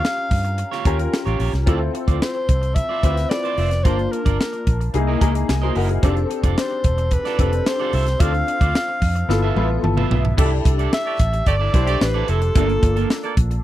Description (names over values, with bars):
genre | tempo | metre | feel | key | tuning
polished 1980s jazz-funk pop | 110 BPM | 4/4 | straight | C major | A4 = 440 Hz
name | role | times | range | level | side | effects
breathy alto saxophone | melody | 0.0-13.4 s | A4 to F5 | -24 LUFS | equal | slapback echo
warm grand piano | accompaniment | 0.0-13.6 s | A3 to Bb5 | -25 LUFS | left 4 dB | ensemble chorus
electric guitar at the edge of break-up | riff | 0.0-13.5 s | Bb3 to E5 | -28 LUFS | right 11 dB | lush chorus
crisp fusion drum kit | drums | 0.0-13.6 s | crash cymbal, hi-hat, kick drum, snare drum, toms | -20 LUFS | equal | none
vintage muted fingered electric bass | bass | 0.3-13.6 s | E1 to G2 | -21 LUFS | equal | none
warm horn section | second line | 11.1-13.3 s | A3 to D5 | -25 LUFS | right 7 dB | none
room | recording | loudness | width
little or no reverb | dry, close 1970s-style studio recording | -17 LUFS | side -14 dB against mid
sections
0.0-10.4 A section; 10.4-13.6 B section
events
grand piano fill 4.9-6.0, 9.6-10.4; drum fill 9.3-10.4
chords
0.0 Eb9; 1.7 Dm7; 3.9 Gm7; 4.9 C7alt; 6.0 F6; 8.2 Dm7; 9.3 G13; 10.4 C69; 12.6 Gm9